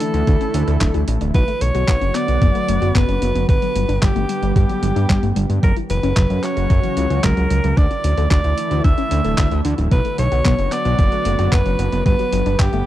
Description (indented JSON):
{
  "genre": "italo disco",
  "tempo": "112 BPM",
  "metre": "4/4",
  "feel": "straight",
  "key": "B minor",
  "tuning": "A4 = 439 Hz",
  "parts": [
    { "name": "edgy alto saxophone", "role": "melody", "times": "0.0-12.9 s", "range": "G4 to E5", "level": "-23 LUFS", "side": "right 1 dB", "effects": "tape echo" },
    { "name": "lush unison pad", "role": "sustained chords", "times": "0.0-12.9 s", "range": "C#3 to G4", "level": "-25 LUFS", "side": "equal", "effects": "chorus" },
    { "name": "warbly dusty pluck", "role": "arpeggios", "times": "0.0-12.8 s", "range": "E3 to A4", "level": "-26 LUFS", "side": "left 4 dB", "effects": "chorus, tape echo" },
    { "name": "dusty soul sampler-style drum kit", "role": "drums", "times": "0.0-12.8 s", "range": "handclaps, hi-hat", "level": "-28 LUFS", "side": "right 1 dB", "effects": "none" },
    { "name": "fat analog bass", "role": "bass", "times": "0.1-12.8 s", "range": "D1 to G2", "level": "-19 LUFS", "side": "equal", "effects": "none" },
    { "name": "electronic kick drum", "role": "drums", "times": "0.3-12.7 s", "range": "none", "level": "-17 LUFS", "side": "equal", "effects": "none" }
  ],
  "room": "little or no reverb",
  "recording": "dry, close 1970s-style studio recording",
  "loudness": "-15 LUFS",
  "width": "side -13 dB against mid",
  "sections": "0.0-12.9 A section",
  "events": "none",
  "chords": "0.0 Dsus2; 1.3 Bm; 3.5 G; 5.6 F#; 7.8 Dsus2; 9.9 Bm; 12.1 G",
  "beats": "0.27 0.81 | 1.34 1.88 2.42 2.95 | 3.49 4.02 4.56 5.09 | 5.63 6.17 6.70 7.24 | 7.77 8.31 8.85 9.38 | 9.92 10.45 10.99 11.52 | 12.06 12.60"
}